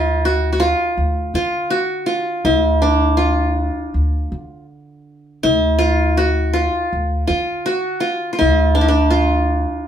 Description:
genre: Arabic maqam ensemble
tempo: 81 BPM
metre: 4/4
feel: straight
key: unclear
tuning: A4 = 441 Hz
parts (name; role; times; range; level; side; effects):
- qanun; melody; 0.0-9.9 s; D4 to F#4; -17 LUFS; equal; none
- upright bass; bass; 0.0-9.6 s; D2 to D3; -19 LUFS; equal; none
room: wet studio reverb, RT60 0.6 s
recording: band playing live in one room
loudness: -15 LUFS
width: side -9 dB against mid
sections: 0.0-9.9 A section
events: none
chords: none

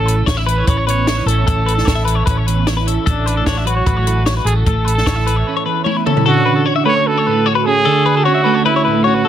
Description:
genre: math rock and midwest emo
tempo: 150 BPM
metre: 4/4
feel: straight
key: unclear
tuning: A4 = 440 Hz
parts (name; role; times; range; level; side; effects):
- breathy trumpet; melody; 0.0-9.3 s; D4 to C#5; -18 LUFS; right 3 dB; none
- twelve-string electric guitar; accompaniment; 0.0-9.3 s; E2 to F#4; -19 LUFS; right 5 dB; ensemble chorus
- twelve-string electric guitar; arpeggios; 0.0-9.3 s; A4 to E5; -19 LUFS; left 9 dB; none
- hollow-body short-scale fingered electric bass; bass; 0.0-5.4 s; A1; -17 LUFS; equal; none
- compact cocktail drum kit; drums; 0.1-6.3 s; hi-hat, kick drum, snare drum, toms; -19 LUFS; equal; none
room: light reverb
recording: dense, heavily limited modern master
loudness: -12 LUFS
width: side -10 dB against mid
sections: 0.0-6.3 A section; 6.3-9.3 B section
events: drum fill 5.9-6.3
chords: 0.0 A; 3.1 Dmaj7/A; 4.7 A; 6.3 Dmaj9

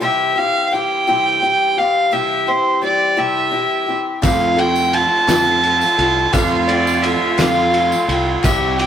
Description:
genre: indie folk with a building arrangement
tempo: 57 BPM (dotted quarters)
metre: 6/8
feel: straight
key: unclear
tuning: A4 = 436 Hz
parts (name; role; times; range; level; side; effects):
- warm fiddle; melody; 0.0-8.9 s; C5 to A5; -16 LUFS; right 1 dB; tape echo
- picked steel-string acoustic guitar; accompaniment; 0.0-8.9 s; C3 to A4; -21 LUFS; left 3 dB; none
- warm French horn section; sustained chords; 0.0-8.9 s; C3 to G4; -29 LUFS; left 7 dB; none
- warm cello; second line; 4.2-8.9 s; F4 to G4; -25 LUFS; right 6 dB; none
- dark upright piano; accompaniment; 4.2-8.9 s; F1 to E5; -29 LUFS; right 3 dB; none
- fingered electric bass; bass; 4.2-8.9 s; C2 to F2; -22 LUFS; right 2 dB; none
- cloth-damped thuddy drum kit; drums; 4.2-8.9 s; kick drum, ride cymbal, snare drum; -21 LUFS; equal; none
- group handclap; percussion; 4.2-8.9 s; none; -29 LUFS; left 3 dB; none
- tambourine; percussion; 4.2-8.6 s; none; -33 LUFS; right 6 dB; none
room: wet small room reverb, RT60 0.5 s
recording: rough rehearsal-room recording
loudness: -14 LUFS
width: side -9 dB against mid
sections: 0.0-8.9 A section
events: none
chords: 0.0 C; 4.2 F

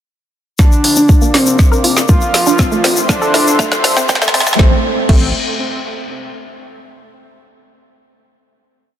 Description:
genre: melodic techno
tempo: 120 BPM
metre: 4/4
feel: straight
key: A phrygian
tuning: A4 = 440 Hz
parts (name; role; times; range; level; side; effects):
- fat analog lead; melody; 0.6-5.3 s; C4 to F4; -17 LUFS; equal; sidechain pumping, digital delay
- dark analog pad; sustained chords; 0.6-4.8 s; A3 to D6; -22 LUFS; equal; chorus, sidechain pumping
- woody wave-folded pluck; arpeggios; 0.6-5.3 s; A3 to Bb4; -20 LUFS; right 1 dB; chorus, sidechain pumping, dub echo
- deep house drum kit; drums; 0.6-5.2 s; crash cymbal, hi-hat, snare drum; -16 LUFS; equal; high-pass filter on snare, small room ambience, sidechain pumping on hats, high-pass filter on hats, sidechain pumping on cymbals, high-pass filter on cymbals
- electronic kick drum; drums; 0.6-5.2 s; none; -11 LUFS; equal; small room ambience
- egg shaker; percussion; 0.6-4.6 s; none; -21 LUFS; left 6 dB; none
- riser; sound effects; 2.2-4.6 s; none; -25 LUFS; equal; none
- gritty driven synth bass; bass; 0.8-5.3 s; G1 to Bb1; -24 LUFS; equal; none
room: light reverb, digital ambience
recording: dense, heavily limited modern master, high-pass filter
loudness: -10 LUFS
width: side -10 dB against mid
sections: 0.6-4.6 build; 4.6-6.6 final chord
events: build-up 0.6-4.6; drum fill 0.6-4.6; filter sweep on synth pluck 0.6-4.6; filter sweep 0.6-4.6; riser 2.2-4.6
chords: 0.6 Bb; 2.6 Am

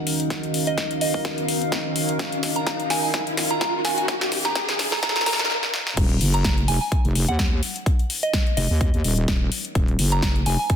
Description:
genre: bass house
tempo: 127 BPM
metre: 4/4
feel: swing 55% on 16ths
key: Eb minor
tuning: A4 = 440 Hz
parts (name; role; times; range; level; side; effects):
- dark analog pad; sustained chords; 0.0-10.8 s; Eb3 to Gb5; -31 LUFS; right 2 dB; chorus, sidechain pumping
- riser; sound effects; 0.1-5.5 s; none; -29 LUFS; equal; none
- warbly tape-like pad; texture; 0.0-5.5 s; Eb4 to F5; -29 LUFS; left 2 dB; chorus, built-in reverb, sidechain pumping
- big-room dance drum kit; drums; 0.1-10.8 s; crash cymbal, hi-hat, snare drum; -26 LUFS; left 2 dB; high-pass filter on hats, small room ambience, high-pass filter on snare, high-pass filter on toms, high-pass filter on cymbals
- electronic kick drum; drums; 0.3-10.8 s; none; -23 LUFS; equal; high-pass filter on kick, small room ambience
- soft synth bell; melody; 0.7-10.7 s; Eb5 to Bb5; -28 LUFS; right 1 dB; chorus, ping-pong delay
- wobble bass; bass; 6.0-10.6 s; Eb1 to Eb2; -21 LUFS; equal; chorus, sidechain pumping
room: light reverb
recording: dense, heavily limited modern master, high-pass filter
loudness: -20 LUFS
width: side -8 dB against mid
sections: 0.0-6.0 A section; 6.0-10.8 B section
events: build-up 0.0-6.0; drum fill 0.0-5.5, 5.5-6.0; filter sweep 0.0-6.0; riser 0.1-5.5; stop 5.5-6.0; drop 6.0-10.8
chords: 0.0 Ebm7

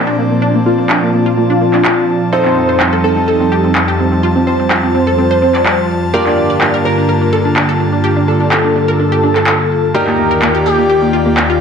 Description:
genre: progressive house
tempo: 126 BPM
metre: 4/4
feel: straight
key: G minor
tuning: A4 = 440 Hz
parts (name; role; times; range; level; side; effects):
- airy breathy pad; sustained chords; 0.0-11.6 s; Eb2 to A5; -15 LUFS; equal; chorus
- clear baby grand piano; stabs; 0.0-11.6 s; Bb3 to A5; -22 LUFS; right 2 dB; ping-pong delay
- wide unison pluck; arpeggios; 0.1-11.6 s; Bb3 to D5; -16 LUFS; right 1 dB; lush chorus, ping-pong delay
- plucky unison lead; melody; 0.7-11.3 s; F4 to D5; -16 LUFS; left 1 dB; lush chorus, ping-pong delay
- electronic handclaps; drums; 0.9-11.5 s; none; -16 LUFS; equal; overdrive, low-pass filter on snare
room: moderate digital room reverb, RT60 1.1 s, digital ambience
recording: none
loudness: -10 LUFS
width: side -6 dB against mid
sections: 0.0-11.6 A section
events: none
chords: 0.0 Bbmaj9; 2.3 F7; 6.1 Gm7; 9.9 Ebmaj7

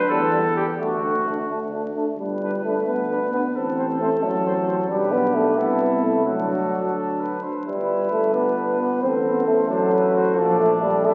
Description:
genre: classical, brass quintet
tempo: 88 BPM (dotted quarters)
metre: 6/8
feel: straight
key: G major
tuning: A4 = 441 Hz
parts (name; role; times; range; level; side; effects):
- warm cornet; melody; 0.0-11.1 s; F#4 to E5; -31 LUFS; equal; none
- mellow trumpet; second line; 0.0-11.1 s; C4 to C5; -32 LUFS; equal; none
- clear French horn; accompaniment; 0.1-11.1 s; B3 to B4; -28 LUFS; equal; none
- clear euphonium; accompaniment; 0.1-11.1 s; F3 to C4; -25 LUFS; equal; none
- mellow tuba; bass; 0.1-11.1 s; G1 to E2; -32 LUFS; equal; none
room: wet concert hall reverb, RT60 1.6 s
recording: very old 78 rpm record, vinyl crackle, nothing above 7.8 kHz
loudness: -22 LUFS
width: mono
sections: 0.0-2.2 A section; 2.2-11.1 B section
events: none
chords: 0.1 Em; 0.8 D; 2.2 G; 3.6 F#dim/A; 4.9 G/B; 5.6 Am/C; 6.3 D; 7.7 G; 9.0 F#dim/A; 10.4 Bbmaj7

